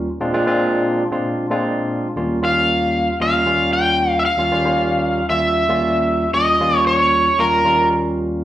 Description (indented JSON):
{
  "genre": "blues",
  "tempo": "115 BPM",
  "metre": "4/4",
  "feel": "straight",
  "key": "unclear",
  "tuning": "A4 = 441 Hz",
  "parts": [
    { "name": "barky tine electric piano", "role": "accompaniment", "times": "0.0-8.4 s", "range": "Eb2 to F4", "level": "-19 LUFS", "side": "equal", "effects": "medium stereo tremolo, slapback echo" },
    { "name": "overdriven slide guitar", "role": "melody", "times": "2.4-7.9 s", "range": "Bb4 to G5", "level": "-16 LUFS", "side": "equal", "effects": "slapback echo" }
  ],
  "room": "moderate club reverb, RT60 0.7 s",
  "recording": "live gig heard through the venue's PA, club reverb",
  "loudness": "-15 LUFS",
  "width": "side -13 dB against mid",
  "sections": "0.0-8.4 A section",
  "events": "none",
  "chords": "0.1 Bb9; 2.2 Eb9"
}